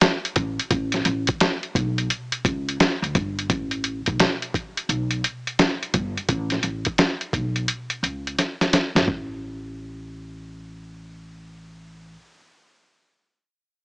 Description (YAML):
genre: hip hop, jazz-hop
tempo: 86 BPM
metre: 4/4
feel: swing 65% on 16ths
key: A mixolydian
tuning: A4 = 440 Hz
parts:
  - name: lo-fi sampler-style drum kit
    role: drums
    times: 0.0-9.3 s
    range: hi-hat, kick drum, snare drum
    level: -20 LUFS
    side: equal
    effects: overdrive
  - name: upright bass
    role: bass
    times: 0.4-12.2 s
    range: G1 to D2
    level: -28 LUFS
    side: equal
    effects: none
room: little or no reverb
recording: dry, gritty hardware recording, transformer saturation, cassette tape, small speaker sound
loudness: -21 LUFS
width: side -36 dB against mid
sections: 0.0-3.5 A section; 3.5-9.1 B section; 9.1-11.9 C section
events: drum fill 8.4-9.1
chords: none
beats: 0.01 | 0.71 1.40 2.10 2.80 | 3.50 4.20 4.89 5.59 | 6.29 6.99 7.68 8.38 | 9.08 9.78 10.47 11.17